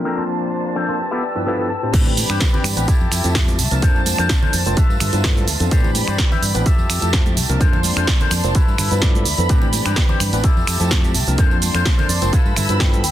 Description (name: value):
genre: filtered disco house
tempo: 127 BPM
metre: 4/4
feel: swing 53% on 16ths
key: A minor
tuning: A4 = 442 Hz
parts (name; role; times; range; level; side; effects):
- overdriven tine electric piano; accompaniment; 0.0-13.0 s; G2 to A5; -25 LUFS; equal; phaser, vintage 12-bit sampler grit, sidechain pumping, low-pass filter
- muted studio violin section; sustained chords; 0.0-13.1 s; Bb3 to E6; -26 LUFS; equal; sidechain pumping, low-pass filter
- electric guitar with an envelope filter; riff; 0.0-13.1 s; F3 to A5; -26 LUFS; left 4 dB; sidechain pumping, low-pass filter
- fingered electric bass; bass; 1.9-13.1 s; F1 to A2; -21 LUFS; equal; sidechain pumping, low-pass filter
- electronic kick drum; drums; 1.9-12.9 s; none; -16 LUFS; equal; none
- punchy analog drum machine; drums; 1.9-13.1 s; crash cymbal, finger snaps, hi-hat, shaker, snare drum; -22 LUFS; right 2 dB; sidechain pumping on hats, sidechain pumping on cymbals, sidechain pumping on perc
- tambourine and congas; percussion; 1.9-13.1 s; none; -28 LUFS; right 4 dB; sidechain pumping on perc, low-pass filter on perc
room: light reverb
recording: dense, heavily limited modern master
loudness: -15 LUFS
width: side -12 dB against mid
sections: 0.0-1.9 A section; 1.9-13.1 B section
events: filter sweep 0.0-1.9; clean electric guitar fill 1.0-1.9, 8.8-9.5, 11.9-13.1; drop 1.9-13.1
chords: 0.0 Bbmaj9/F; 1.0 G13; 1.9 Am11; 2.9 Fmaj9; 3.8 Bbmaj9/F; 4.8 G13; 5.7 Am11; 6.7 Fmaj9; 7.6 Bbmaj9/F; 8.6 G13; 9.5 Am11; 10.4 Fmaj9; 11.4 Bbmaj9/F; 12.3 G13